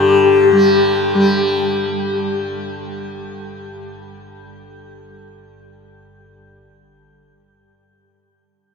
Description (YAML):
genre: world meditative, free-time meditation music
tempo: free time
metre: none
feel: none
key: unclear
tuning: A4 = 440 Hz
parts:
  - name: mellow alto flute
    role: melody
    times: 0.0-1.4 s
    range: G4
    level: -16 LUFS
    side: left 3 dB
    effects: shimmer reverb, tape echo
  - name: tanpura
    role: drone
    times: 0.0-7.7 s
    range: G2 to G3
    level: -19 LUFS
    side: equal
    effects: none
  - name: crotales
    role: texture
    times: 0.0-1.4 s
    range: G6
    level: -32 LUFS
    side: left 2 dB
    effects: stereo widening, shimmer reverb
room: wet huge ambient reverb, RT60 7.7 s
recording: in a vast, echoing space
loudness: -13 LUFS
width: side -5 dB against mid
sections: 0.0-1.9 A section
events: none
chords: none